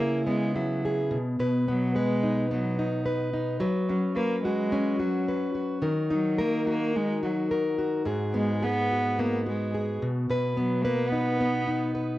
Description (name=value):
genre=pop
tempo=108 BPM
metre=4/4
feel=straight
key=B major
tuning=A4 = 440 Hz
part: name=warm cello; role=melody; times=0.0-12.2 s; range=F#3 to B3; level=-29 LUFS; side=right 1 dB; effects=cassette tape, plate reverb
part: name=fingerpicked plugged-in steel-string acoustic guitar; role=accompaniment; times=0.0-12.2 s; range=G#2 to B4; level=-26 LUFS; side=left 1 dB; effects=cassette tape
room=wet studio reverb, RT60 0.5 s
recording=home recording on cassette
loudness=-24 LUFS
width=side -16 dB against mid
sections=0.0-12.2 A section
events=none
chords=0.0 C#m7; 1.1 B; 3.6 F#sus4; 5.8 D#m; 8.1 G#m7; 10.0 B